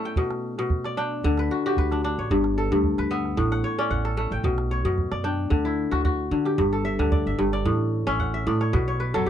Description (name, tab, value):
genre	west african traditional, West African string and xylophone music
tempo	112 BPM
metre	4/4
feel	swing 54% on 16ths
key	D major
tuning	A4 = 440 Hz
part	kora	arpeggios	0.0-9.3 s	G2 to G5	-24 LUFS	left 1 dB	none
part	calabash	percussion	0.0-9.3 s	none	-27 LUFS	right 2 dB	none
part	upright bass	bass	1.2-9.3 s	G1 to D3	-27 LUFS	right 1 dB	none
room	little or no reverb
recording	dry, close 1970s-style studio recording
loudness	-22 LUFS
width	side -10 dB against mid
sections	0.0-5.5 A section; 5.5-9.3 B section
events	kora fill 8.1-9.3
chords	0.2 Bm; 1.2 D; 2.3 G; 3.4 A; 4.4 Bm; 5.5 D; 6.6 G5; 7.7 A; 8.7 B5